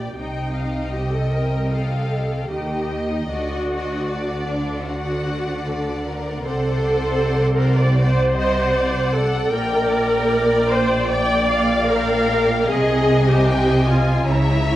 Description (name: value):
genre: classical, slow romantic movement for string orchestra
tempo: 77 BPM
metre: 4/4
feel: rubato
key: unclear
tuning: A4 = 439 Hz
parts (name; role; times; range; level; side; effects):
- clear symphonic violin section; melody; 0.0-14.8 s; A4 to Ab5; -28 LUFS; left 3 dB; none
- bright symphonic violin section; second line; 0.0-14.8 s; C#5 to A#5; -29 LUFS; left 3 dB; none
- clear symphonic viola section; accompaniment; 0.0-14.8 s; D4 to D5; -21 LUFS; equal; none
- bright symphonic double bass section; bass; 0.0-14.8 s; Bb1 to Eb2; -24 LUFS; right 1 dB; none
- rich symphonic cello section; bass; 0.0-14.8 s; Bb2 to Eb3; -24 LUFS; right 1 dB; none
room: wet recital hall reverb, RT60 1.3 s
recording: worn, warbling old tape, cassette tape, warbly pitch drift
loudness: -17 LUFS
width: side -14 dB against mid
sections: 0.0-14.8 A section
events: none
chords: 0.2 Cm; 3.3 D; 6.4 D7/C; 9.5 Gm/Bb; 12.7 Ab/C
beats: | 0.17 0.95 1.72 2.50 | 3.29 4.08 4.86 5.65 | 6.43 7.20 7.97 8.75 | 9.52 10.30 11.10 11.89 | 12.70 13.48 14.26